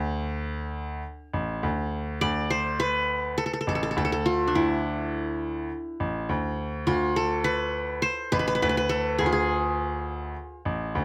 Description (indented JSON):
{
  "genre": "Turkish makam ensemble",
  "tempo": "103 BPM",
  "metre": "4/4",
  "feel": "straight",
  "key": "D makam nikriz",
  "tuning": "A4 = 445 Hz",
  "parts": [
    { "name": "qanun", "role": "melody", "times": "0.0-10.6 s", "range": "D4 to D5", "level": "-28 LUFS", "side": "equal", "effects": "none" },
    { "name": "bright baby grand piano", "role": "bass", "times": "0.0-11.0 s", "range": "A1 to D2", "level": "-31 LUFS", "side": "equal", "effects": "none" }
  ],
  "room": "little or no reverb",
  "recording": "close, detailed microphones",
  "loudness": "-27 LUFS",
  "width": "mono",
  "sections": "0.0-2.2 A section; 2.2-11.0 A section",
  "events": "none",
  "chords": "none"
}